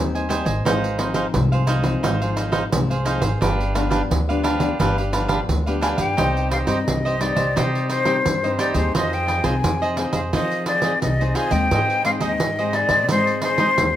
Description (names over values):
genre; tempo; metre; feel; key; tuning
samba and choro; 87 BPM; 4/4; straight; C minor; A4 = 440 Hz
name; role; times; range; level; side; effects
nylon-string guitar; accompaniment; 0.0-14.0 s; G2 to Ab4; -27 LUFS; left 5 dB; none
upright bass; bass; 0.0-14.0 s; G1 to Ab3; -24 LUFS; equal; none
cavaquinho; accompaniment; 0.1-13.7 s; D4 to Ab5; -25 LUFS; right 3 dB; none
pandeiro; percussion; 0.2-14.0 s; none; -25 LUFS; right 3 dB; none
breathy jazz flute; melody; 5.8-14.0 s; C5 to Ab5; -22 LUFS; left 2 dB; tape echo
room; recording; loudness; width
moderate large studio reverb, RT60 0.9 s; none; -18 LUFS; side -12 dB against mid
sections
0.0-6.2 A section; 6.2-14.0 B section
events
none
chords
0.0 Abmaj7; 0.7 Fm7/Ab; 3.4 G7; 6.2 Cm; 8.9 Fm7; 11.7 Ab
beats
| 0.66 1.35 2.04 2.73 | 3.42 4.11 4.80 5.49 | 6.18 6.87 7.57 8.26 | 8.95 9.64 10.33 11.02 | 11.71 12.40 13.10 13.79